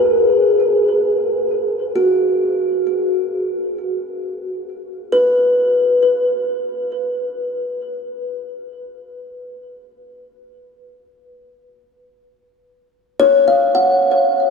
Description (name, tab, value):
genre	ambient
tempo	free time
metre	none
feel	none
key	unclear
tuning	A4 = 440 Hz
part	kalimba	solo	0.0-6.3, 13.2-14.5 s	F#4 to F#5	-15 LUFS	left 1 dB	ping-pong delay
room	wet huge ambient reverb, RT60 8.9 s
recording	none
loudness	-15 LUFS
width	side -5 dB against mid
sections	0.0-1.5 A section; 1.5-14.5 B section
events	none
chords	0.0 N.C.; 1.5 B5